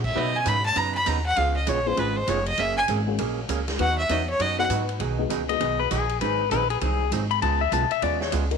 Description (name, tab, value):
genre	country, western swing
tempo	198 BPM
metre	4/4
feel	swing 62% on 8ths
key	B major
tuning	A4 = 441 Hz
part	clear fiddle	melody	0.0-4.7 s	B4 to B5	-24 LUFS	equal	none
part	upright bass	bass	0.0-8.6 s	E#1 to B2	-27 LUFS	equal	none
part	swinging big-band drum kit	drums	0.0-8.6 s	crash cymbal, hi-hat, kick drum, ride cymbal, snare drum	-34 LUFS	equal	none
part	honky-tonk upright piano	accompaniment	0.2-5.9, 8.5-8.6 s	F#3 to C#5	-31 LUFS	left 13 dB	none
part	vintage hollow-body jazz guitar	accompaniment	0.2-8.4 s	B2 to B4	-30 LUFS	right 14 dB	none
part	pedal steel guitar	second line	5.5-8.3 s	G#4 to B5	-24 LUFS	left 12 dB	none
room	light reverb, small room reverb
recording	1960s-style stereo with parts hard left and right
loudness	-22 LUFS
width	side -6 dB against mid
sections	0.0-5.0 A section; 5.0-8.6 A section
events	fiddle solo 0.0-5.0; pedal steel guitar solo 5.0-8.6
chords	0.2 Badd9; 1.4 C#7; 2.6 F#add9; 3.8 B; 5.0 B6; 6.2 G#7; 7.4 C#7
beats	| 0.16 0.46 0.76 1.07 | 1.37 1.67 1.98 2.28 | 2.58 2.88 3.19 3.49 | 3.79 4.09 4.40 4.70 | 5.00 5.30 5.61 5.91 | 6.21 6.51 6.81 7.12 | 7.42 7.72 8.02 8.32